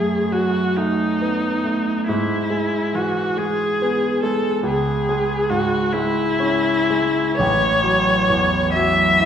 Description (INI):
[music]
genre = classical, romantic duo for viola and grand piano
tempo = 46 BPM (dotted quarters)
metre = 6/8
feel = rubato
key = E major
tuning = A4 = 440 Hz
[part]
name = warm viola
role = melody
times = 0.0-9.3 s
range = D#4 to E5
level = -19 LUFS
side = left 2 dB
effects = none
[part]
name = clear concert grand piano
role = accompaniment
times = 0.0-9.3 s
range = A1 to E4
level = -21 LUFS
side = right 1 dB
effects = none
[sound]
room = wet scoring stage reverb, RT60 1.8 s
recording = heard from further back in the room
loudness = -17 LUFS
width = side -8 dB against mid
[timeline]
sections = 0.0-9.3 A section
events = none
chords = 0.0 B7/F#; 2.1 E/G#; 4.7 C#m; 7.4 F#m7/A